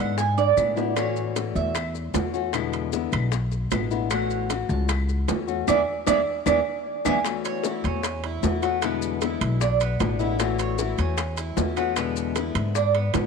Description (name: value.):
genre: latin, Cuban son and guajira.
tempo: 153 BPM.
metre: 4/4.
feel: straight.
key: A major.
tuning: A4 = 435 Hz.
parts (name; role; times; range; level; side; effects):
nylon-string guitar; accompaniment; 0.0-13.3 s; B2 to F#4; -28 LUFS; left 14 dB; none.
Cuban tres; arpeggios; 0.0-13.3 s; B3 to A5; -26 LUFS; right 8 dB; none.
upright bass; bass; 0.0-13.3 s; A1 to A2; -27 LUFS; left 1 dB; none.
bongos; percussion; 0.2-13.3 s; none; -34 LUFS; left 15 dB; none.
maracas; percussion; 0.2-13.3 s; none; -38 LUFS; left 16 dB; none.
timbales; percussion; 0.4-13.3 s; none; -32 LUFS; right 12 dB; none.
claves; percussion; 0.6-7.1 s; none; -35 LUFS; left 14 dB; none.
room: moderate plate reverb, RT60 3.4 s.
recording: 1960s-style stereo with parts hard left and right.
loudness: -22 LUFS.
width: side -5 dB against mid.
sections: 0.0-7.3 A section; 7.3-13.3 B section.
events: Cuban tres solo 0.0-7.3; drum fill 0.4-1.0, 5.7-7.3; band accent 5.7-7.3.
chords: 0.0 E7; 1.0 A6; 2.5 E7; 4.1 A6; 5.7 E7; 7.3 A6; 8.8 E7; 10.4 A6; 12.0 E7.